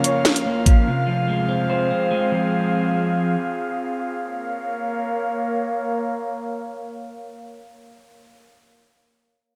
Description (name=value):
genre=hip hop, drill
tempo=145 BPM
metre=4/4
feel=half-time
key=Bb minor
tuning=A4 = 441 Hz
part: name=electric guitar at the edge of break-up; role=accompaniment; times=0.0-3.4 s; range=C3 to Db5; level=-23 LUFS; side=equal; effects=lush chorus, low-pass filter
part: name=airy breathy pad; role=sustained chords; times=0.0-8.2 s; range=Bb3 to F5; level=-27 LUFS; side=equal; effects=chorus, low-pass filter
part: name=drill drum kit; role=drums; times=0.0-0.8 s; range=hi-hat, kick drum, snare drum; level=-18 LUFS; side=equal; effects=none
part: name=downlifter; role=sound effects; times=0.0-0.9 s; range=none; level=barely audible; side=none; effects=none
room=moderate echo chamber reverb, RT60 1.6 s, digital ambience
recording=none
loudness=-22 LUFS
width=mono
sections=0.0-4.2 A section; 4.2-7.5 B section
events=none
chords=0.0 Bbm; 0.9 Fm; 4.2 Bbm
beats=0.04 0.46 | 0.87 1.28 1.70 2.11 | 2.52 2.94 3.35 3.77 | 4.18 4.59 5.01 5.42 | 5.83 6.25 6.66 7.08